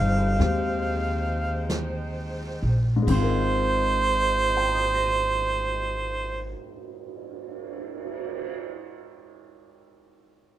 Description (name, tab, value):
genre	jazz ballad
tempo	42-49 BPM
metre	4/4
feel	swing 68% on 8ths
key	Ab major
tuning	A4 = 437 Hz
part	warm harmonica	melody	0.0-6.6 s	C5 to F5	-24 LUFS	right 3 dB	none
part	clear baby grand piano	accompaniment	0.0-10.6 s	Ab2 to Eb7	-31 LUFS	left 5 dB	none
part	warm saxophone section	sustained chords	0.0-6.6 s	Ab3 to G5	-36 LUFS	equal	none
part	upright bass	bass	0.0-6.5 s	G1 to Eb2	-26 LUFS	equal	none
part	jazz brush drum kit	drums	0.4-8.5 s	brushed snare drum, crash cymbal, cymbal swell, hi-hat, kick drum, snare drum	-36 LUFS	right 4 dB	none
room	light reverb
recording	dark, warm production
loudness	-22 LUFS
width	side -12 dB against mid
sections	0.0-3.1 A section; 3.1-8.7 B section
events	slowing down 0.0-3.1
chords	0.0 Ab6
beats	0.40 1.69 | 3.07 4.49 5.90 7.32